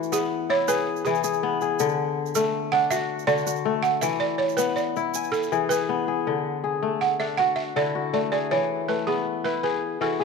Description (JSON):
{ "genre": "west african traditional, West African string and xylophone music", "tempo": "107 BPM (dotted quarters)", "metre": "12/8", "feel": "straight", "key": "D lydian", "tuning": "A4 = 440 Hz", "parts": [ { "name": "kora", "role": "arpeggios", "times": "0.0-10.2 s", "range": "D3 to G#5", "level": "-24 LUFS", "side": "left 8 dB", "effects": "none" }, { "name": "egg shaker", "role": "percussion", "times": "0.0-5.8 s", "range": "none", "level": "-35 LUFS", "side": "right 18 dB", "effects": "none" }, { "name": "balafon", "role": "melody", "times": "0.1-10.2 s", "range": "G#4 to F#5", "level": "-25 LUFS", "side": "right 6 dB", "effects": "none" } ], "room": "moderate echo chamber reverb, RT60 1.8 s, small room ambience", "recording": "1960s-style stereo with parts hard left and right", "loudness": "-22 LUFS", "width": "side -4 dB against mid", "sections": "0.0-6.3 A section; 6.3-10.2 B section", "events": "balafon solo 0.0-6.3", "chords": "0.0 E; 1.8 D; 4.0 E; 6.3 D; 8.5 E", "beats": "0.12 0.68 1.24 | 1.80 2.35 2.91 3.47 | 4.03 4.59 5.15 5.71 | 6.26 6.83 7.39 7.95 | 8.51 9.07 9.63 10.20" }